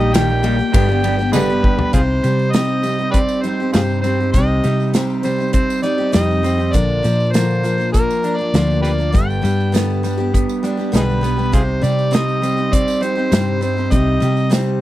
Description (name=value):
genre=folk rock and heartland rock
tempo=100 BPM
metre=4/4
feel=straight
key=C minor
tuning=A4 = 440 Hz
part: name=overdriven harmonica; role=melody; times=0.0-14.5 s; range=Eb4 to G5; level=-21 LUFS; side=equal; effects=none
part: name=picked steel-string acoustic guitar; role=accompaniment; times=0.0-14.8 s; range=G2 to Bb4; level=-22 LUFS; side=left 4 dB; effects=none
part: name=electric guitar through a small old amp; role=riff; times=0.0-14.8 s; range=G2 to G4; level=-21 LUFS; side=right 3 dB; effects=none
part: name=hollow-body short-scale fingered electric bass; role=bass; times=0.0-14.8 s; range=G1 to C3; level=-19 LUFS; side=equal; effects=none
part: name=mellow reed electric piano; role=accompaniment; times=0.1-1.8 s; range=G4 to Eb5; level=-28 LUFS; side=right 15 dB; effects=fast tremolo
part: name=natural country drum kit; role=drums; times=0.1-14.7 s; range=hi-hat, kick drum, ride cymbal, snare drum, toms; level=-17 LUFS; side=equal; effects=none
part: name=tambourine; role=percussion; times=0.1-14.7 s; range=none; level=-37 LUFS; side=right 16 dB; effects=none
room=little or no reverb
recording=dry, close 1970s-style studio recording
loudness=-14 LUFS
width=side -15 dB against mid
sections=0.0-1.9 A section; 1.9-14.8 B section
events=drum fill 1.3-1.9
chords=0.0 Eb/Bb; 0.7 G; 1.9 Cm; 6.7 Bb; 9.1 G; 11.5 Cm